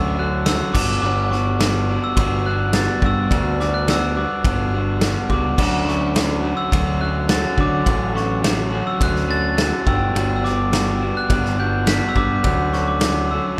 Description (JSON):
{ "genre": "indie rock", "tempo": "105 BPM", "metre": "4/4", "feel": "straight", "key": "unclear", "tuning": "A4 = 439 Hz", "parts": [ { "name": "glockenspiel with soft plastic mallets", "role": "melody", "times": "0.0-13.6 s", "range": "C#6 to B6", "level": "-27 LUFS", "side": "equal", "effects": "none" }, { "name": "electric guitar through a small old amp", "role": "riff", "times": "0.0-13.6 s", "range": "D3 to F#4", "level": "-26 LUFS", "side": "equal", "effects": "none" }, { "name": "growling fingered electric bass", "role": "bass", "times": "0.0-13.4 s", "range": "G1 to D3", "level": "-25 LUFS", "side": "equal", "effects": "overdrive" }, { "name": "loose indie drum kit", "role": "drums", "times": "0.5-13.1 s", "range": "crash cymbal, kick drum, ride cymbal, snare drum", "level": "-25 LUFS", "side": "equal", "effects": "none" }, { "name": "mellow tine electric piano", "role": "second line", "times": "5.6-13.6 s", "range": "F#5 to G5", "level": "-35 LUFS", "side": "equal", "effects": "none" } ], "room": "wet church reverb, RT60 3.1 s", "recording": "recorded in a church or concert hall", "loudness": "-19 LUFS", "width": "mono", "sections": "0.0-13.6 A section", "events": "none", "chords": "0.0 Dmaj7; 0.8 Gmaj7; 5.6 Dmaj7; 9.9 Gmaj7; 12.4 Dmaj7", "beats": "0.47 | 1.03 1.60 2.17 2.74 | 3.31 3.88 4.44 5.01 | 5.58 6.15 6.72 7.29 | 7.86 8.43 9.01 9.58 | 10.15 10.72 11.29 11.87 | 12.44 13.01 13.58" }